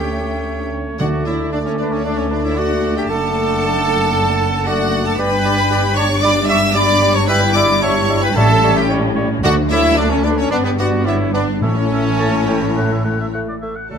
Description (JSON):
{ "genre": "quick classical-period movement for symphony orchestra", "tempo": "113 BPM", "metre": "4/4", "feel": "rubato", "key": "D major", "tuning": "A4 = 445 Hz", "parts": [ { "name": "rich studio violin section", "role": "melody", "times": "0.0-14.0 s", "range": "B4 to E6", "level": "-23 LUFS", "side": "left 2 dB", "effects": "none" }, { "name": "bright clarinet", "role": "second line", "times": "0.0-14.0 s", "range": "B3 to E5", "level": "-25 LUFS", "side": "left 2 dB", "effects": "none" }, { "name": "rich chamber violin section", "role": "second line", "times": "0.0-14.0 s", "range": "B3 to A5", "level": "-25 LUFS", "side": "left 1 dB", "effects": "none" }, { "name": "silver concert flute", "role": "second line", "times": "0.0-14.0 s", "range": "G4 to C#6", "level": "-26 LUFS", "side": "left 2 dB", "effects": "none" }, { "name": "warm oboe", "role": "second line", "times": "0.0-14.0 s", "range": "A4 to A5", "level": "-28 LUFS", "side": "right 1 dB", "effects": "none" }, { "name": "mellow bassoon", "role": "accompaniment", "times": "0.0-14.0 s", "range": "F#3 to B3", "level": "-26 LUFS", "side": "right 3 dB", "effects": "none" }, { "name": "rich studio viola section", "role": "accompaniment", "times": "0.0-14.0 s", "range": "E3 to A4", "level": "-26 LUFS", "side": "right 2 dB", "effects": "none" }, { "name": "dark French horn section", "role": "sustained chords", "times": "0.0-14.0 s", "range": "G3 to F#4", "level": "-24 LUFS", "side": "left 7 dB", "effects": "none" }, { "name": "clear trumpet", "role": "stabs", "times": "0.0-14.0 s", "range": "B3 to E5", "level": "-22 LUFS", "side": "right 4 dB", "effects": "none" }, { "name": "rich chamber double bass section", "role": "bass", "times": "0.0-14.0 s", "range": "F#1 to D2", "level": "-24 LUFS", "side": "right 4 dB", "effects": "none" }, { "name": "warm chamber cello section", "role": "bass", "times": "0.0-14.0 s", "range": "D2 to A3", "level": "-23 LUFS", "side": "equal", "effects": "none" }, { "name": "timpani", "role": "percussion", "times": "1.0-1.7, 8.4-12.4 s", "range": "A2 to D3", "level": "-24 LUFS", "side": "equal", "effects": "none" } ], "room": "moderate recital hall reverb, RT60 1.4 s", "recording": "close, detailed microphones", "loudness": "-14 LUFS", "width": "side -7 dB against mid", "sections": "0.0-13.9 A section", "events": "none", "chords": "0.0 A7/D; 1.0 D5; 3.1 D/F#; 5.2 G; 8.4 A7; 9.4 D; 10.5 G; 11.6 A", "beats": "0.46 | 0.99 1.52 2.05 2.57 | 3.10 3.62 4.15 4.67 | 5.19 5.71 6.24 6.76 | 7.29 7.83 8.37 8.91 | 9.44 9.98 10.51 11.06 | 11.62 12.20 12.77 13.34 | 13.91" }